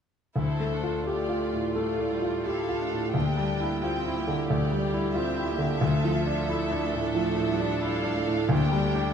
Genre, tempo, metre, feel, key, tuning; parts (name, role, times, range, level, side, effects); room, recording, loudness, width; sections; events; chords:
classical; 89 BPM; 4/4; rubato; D minor; A4 = 440 Hz
clear grand piano; melody; 0.4-9.1 s; D2 to G4; -26 LUFS; equal
rich studio violin section; second line; 0.4-9.1 s; F4 to G5; -33 LUFS; left 1 dB
rich studio viola section; accompaniment; 0.4-9.1 s; G3 to G4; -33 LUFS; right 2 dB
moderate scoring stage reverb, RT60 1.8 s; dark, warm production; -24 LUFS; side -7 dB against mid
0.4-9.1 A section
0.4 Dm; 3.1 Em7b5/D; 5.8 Dm; 8.5 Gm/D